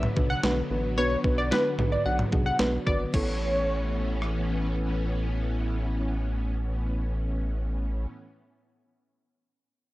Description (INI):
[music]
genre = synth-pop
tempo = 111 BPM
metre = 4/4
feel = straight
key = A major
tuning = A4 = 440 Hz
[part]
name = muted felt-like synth keys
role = accompaniment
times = 0.0-8.1 s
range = B3 to D5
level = -32 LUFS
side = right 1 dB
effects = chorus
[part]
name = string machine, violas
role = sustained chords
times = 0.0-8.1 s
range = A2 to C#4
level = -33 LUFS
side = left 1 dB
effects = ensemble chorus
[part]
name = rubbery square bass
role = bass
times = 0.0-8.1 s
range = G#1 to B1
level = -29 LUFS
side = equal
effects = none
[part]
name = clean 12-bit digital drum machine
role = drums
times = 0.0-4.3 s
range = crash cymbal, kick drum, rim click, snare drum, toms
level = -28 LUFS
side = equal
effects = overdrive
[part]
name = funky polysynth comp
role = second line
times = 0.3-4.7 s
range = B4 to F#5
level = -29 LUFS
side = equal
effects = chorus, slapback echo
[sound]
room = light reverb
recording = worn, warbling old tape, cassette tape, warbly pitch drift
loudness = -25 LUFS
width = side -18 dB against mid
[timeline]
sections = 0.0-3.1 A section; 3.1-7.5 B section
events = none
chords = 0.0 Bm; 3.1 Aadd9